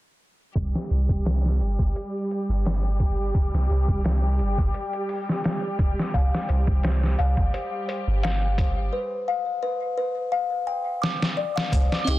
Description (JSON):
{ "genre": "trip hop", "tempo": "86 BPM", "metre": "4/4", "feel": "swing 54% on 16ths", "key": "unclear", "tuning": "A4 = 445 Hz", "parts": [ { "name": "clear symphonic string section", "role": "sustained chords", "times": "0.6-8.9 s", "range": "G3 to G4", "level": "-31 LUFS", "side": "equal", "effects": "none" }, { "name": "soft 808-style bass", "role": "bass", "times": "0.6-12.2 s", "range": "G1 to C2", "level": "-23 LUFS", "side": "equal", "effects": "tube saturation" }, { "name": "trip hop sampler-style drum kit", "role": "drums", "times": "0.6-12.2 s", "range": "hi-hat, kick drum, snare drum", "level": "-25 LUFS", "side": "equal", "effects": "studio reverb" }, { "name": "music box", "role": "arpeggios", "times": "6.1-12.2 s", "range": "B4 to D6", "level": "-27 LUFS", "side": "left 3 dB", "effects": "tape echo" }, { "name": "flickering grainy texture", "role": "texture", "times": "11.9-12.2 s", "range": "D6", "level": "-32 LUFS", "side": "right 4 dB", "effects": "built-in reverb" }, { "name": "tonewheel organ", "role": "accompaniment", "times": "12.0-12.2 s", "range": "C4 to G4", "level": "-24 LUFS", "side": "right 2 dB", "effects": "stopped rotary speaker, tremolo" } ], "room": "light reverb", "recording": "dense, heavily limited modern master, low-pass filter", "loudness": "-22 LUFS", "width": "side -16 dB against mid", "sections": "0.6-11.7 A section", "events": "filter sweep 0.6-11.7; break 8.9-11.7; drum fill 11.0-11.7", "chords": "0.6 C5; 6.1 F5; 8.9 G7 (rootless)" }